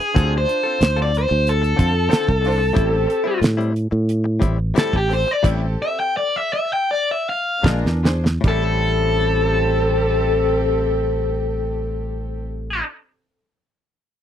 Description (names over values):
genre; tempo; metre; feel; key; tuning
straight-eighth soul blues; 74-92 BPM; 4/4; straight; A minor; A4 = 440 Hz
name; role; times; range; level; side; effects
overdriven electric guitar; melody; 0.0-12.8 s; G4 to G5; -20 LUFS; left 2 dB; slapback echo
direct-recorded clean electric guitar; stabs; 0.0-12.9 s; A2 to A4; -28 LUFS; left 6 dB; none
damped 70s drum kit; drums; 0.0-8.6 s; crash cymbal, hi-hat, kick drum, snare drum; -18 LUFS; right 1 dB; none
rich chamber string section; sustained chords; 0.1-12.5 s; C4 to C5; -28 LUFS; right 1 dB; none
fingered electric bass; bass; 0.2-12.8 s; A1 to A2; -20 LUFS; right 1 dB; none
room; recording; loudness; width
little or no reverb; dry, close 1970s-style studio recording; -17 LUFS; side -10 dB against mid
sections
0.0-8.4 A section; 8.4-11.7 B section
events
slowing down 2.8-8.4; drum fill 7.6-8.4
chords
0.2 Dm7; 2.8 Am7; 7.6 Bb7; 8.4 Am7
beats
| 0.15 0.80 1.46 2.11 | 2.76 3.42 4.08 4.75 | 5.44 6.15 6.88 7.64 | 8.44 9.25 10.07 10.88